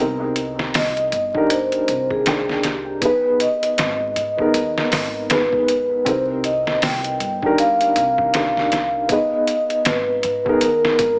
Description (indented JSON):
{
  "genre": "trip hop",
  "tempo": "79 BPM",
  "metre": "4/4",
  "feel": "swing 59% on 16ths",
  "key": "C minor",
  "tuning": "A4 = 438 Hz",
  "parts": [
    { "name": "felt-muted upright piano", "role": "accompaniment", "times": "0.0-11.2 s", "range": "Cb4 to G5", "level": "-25 LUFS", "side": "equal", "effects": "tremolo, low-pass filter, tape echo" },
    { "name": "upright bass", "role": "bass", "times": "0.0-11.2 s", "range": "G1 to Ab2", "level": "-35 LUFS", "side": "equal", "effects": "none" },
    { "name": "trip hop sampler-style drum kit", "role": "drums", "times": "0.4-11.2 s", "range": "hi-hat, kick drum, snare drum", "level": "-25 LUFS", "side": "equal", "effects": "studio reverb" },
    { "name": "vibraphone with soft mallets", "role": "melody", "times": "0.8-11.2 s", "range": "G4 to G5", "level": "-22 LUFS", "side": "equal", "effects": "tape echo" }
  ],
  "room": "light reverb, small room ambience",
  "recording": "vinyl crackle, small speaker sound",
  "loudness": "-19 LUFS",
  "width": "mono",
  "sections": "0.0-11.2 A section",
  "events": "none",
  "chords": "0.0 Cm7; 3.0 Abmadd9; 6.1 Cm7; 9.1 Abmadd9",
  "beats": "0.74 1.50 2.26 | 3.02 3.78 4.54 5.30 | 6.06 6.82 7.58 8.34 | 9.10 9.85 10.61"
}